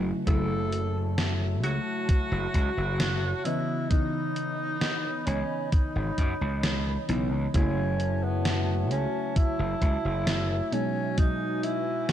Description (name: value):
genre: vaporwave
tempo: 66 BPM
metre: 4/4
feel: straight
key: F# dorian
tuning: A4 = 440 Hz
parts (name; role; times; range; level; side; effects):
- FM electric piano with soft pad layer; accompaniment; 0.0-12.1 s; B2 to D#5; -32 LUFS; left 1 dB; lush chorus
- warbly tape-like pad; sustained chords; 0.0-12.1 s; E3 to B5; -37 LUFS; right 1 dB; chorus, built-in reverb
- gritty slap bass; bass; 0.0-10.6 s; F#1 to F#2; -28 LUFS; equal; overdrive
- breathy tenor saxophone; melody; 0.3-12.1 s; B3 to A4; -32 LUFS; right 1 dB; vintage 12-bit sampler grit, tape echo
- electronic kick drum; drums; 0.3-11.4 s; none; -24 LUFS; equal; vintage 12-bit sampler grit
- gated 80s digital drum machine; drums; 0.3-12.1 s; hi-hat, snare drum; -31 LUFS; equal; gated reverb, gated reverb snare, vintage 12-bit sampler grit
room: light reverb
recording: none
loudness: -25 LUFS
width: side -10 dB against mid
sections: 0.0-12.1 A section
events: none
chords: 0.0 F#m7; 3.5 C#m9; 7.5 F#m7; 10.7 G#m7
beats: | 0.27 1.18 2.09 3.00 | 3.90 4.82 5.72 6.63 | 7.54 8.45 9.36 10.27 | 11.18 12.09